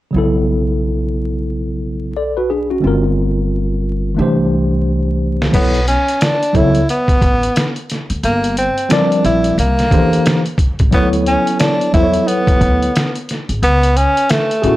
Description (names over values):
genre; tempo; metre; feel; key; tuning
hip hop, jazz-hop; 89 BPM; 4/4; swing 60% on 16ths; unclear; A4 = 440 Hz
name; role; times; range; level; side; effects
tine electric piano; accompaniment; 0.1-14.8 s; A#2 to D5; -16 LUFS; equal; overdrive, fast stereo tremolo
upright bass; bass; 0.1-14.8 s; G1 to E2; -18 LUFS; equal; none
trip hop sampler-style drum kit; drums; 5.4-14.8 s; crash cymbal, hi-hat, kick drum, snare drum; -17 LUFS; equal; none
mellow tenor saxophone; melody; 5.5-14.8 s; A3 to E4; -16 LUFS; equal; none
room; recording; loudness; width
digital ambience; dry, gritty hardware recording, vinyl crackle; -13 LUFS; side -16 dB against mid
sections
0.1-5.5 A section; 5.5-14.8 B section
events
drum fill 4.2-5.5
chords
0.1 B9sus4; 2.8 Gm7; 4.2 Cadd9; 5.5 B9sus4; 8.2 Gm7; 9.6 C9; 10.9 Dmaj7; 13.6 C#m